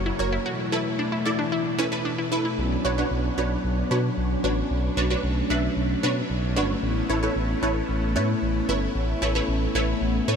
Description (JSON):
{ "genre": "pop", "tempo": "113 BPM", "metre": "4/4", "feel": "straight", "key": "B minor", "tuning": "A4 = 440 Hz", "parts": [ { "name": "chorused pulse-width pad", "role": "sustained chords", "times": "0.0-10.4 s", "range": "B2 to F#4", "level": "-28 LUFS", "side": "left 1 dB", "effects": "none" }, { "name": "smooth synth bass", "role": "bass", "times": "0.0-10.4 s", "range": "F#1 to B2", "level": "-26 LUFS", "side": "equal", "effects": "none" }, { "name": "wide unison pluck", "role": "arpeggios", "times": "0.1-2.5 s", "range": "C#4 to F#4", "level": "-32 LUFS", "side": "left 2 dB", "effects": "ping-pong delay" }, { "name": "wide unison pluck", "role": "accompaniment", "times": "0.2-10.4 s", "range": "D4 to E5", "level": "-26 LUFS", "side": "right 1 dB", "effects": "ensemble chorus" } ], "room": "moderate huge ambient reverb, RT60 7.6 s", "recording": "dreamy mix soaked in reverb", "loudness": "-22 LUFS", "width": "side -6 dB against mid", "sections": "0.0-2.6 A section; 2.6-10.4 B section", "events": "none", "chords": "0.5 Asus2; 2.6 Bmadd9; 6.8 Aadd9", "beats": "| 0.46 0.99 1.52 2.05 | 2.58 3.11 3.64 4.17 | 4.71 5.24 5.77 6.30 | 6.83 7.36 7.89 8.42 | 8.95 9.48 10.02" }